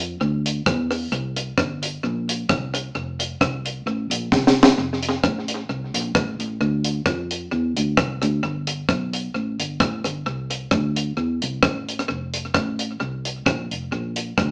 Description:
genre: ska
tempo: 131 BPM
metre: 4/4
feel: swing 54% on 8ths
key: F major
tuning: A4 = 440 Hz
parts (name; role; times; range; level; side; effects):
- fingered electric bass; bass; 0.0-14.5 s; F1 to F2; -28 LUFS; equal; none
- deep reggae drum kit; drums; 0.0-14.5 s; hi-hat, kick drum, rim click, snare drum; -22 LUFS; equal; tape echo
room: wet studio reverb, RT60 0.6 s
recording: band playing live in one room, small speaker sound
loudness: -23 LUFS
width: mono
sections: 0.0-4.8 A section; 4.8-14.5 B section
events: drum fill 4.3-4.8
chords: none

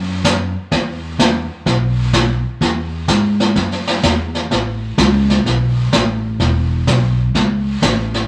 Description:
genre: country, western swing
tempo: 127 BPM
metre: 4/4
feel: swing 66% on 8ths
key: E major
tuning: A4 = 438 Hz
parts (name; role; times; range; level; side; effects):
- upright bass; bass; 0.0-8.3 s; E1 to G#2; -19 LUFS; equal; none
- jazz brush drum kit; drums; 0.2-8.3 s; brushed snare drum, hi-hat, kick drum, snare drum; -19 LUFS; equal; none
room: moderate studio reverb, RT60 0.5 s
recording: none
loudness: -16 LUFS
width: mono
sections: 0.0-2.6 A section; 2.6-8.3 B section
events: none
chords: none

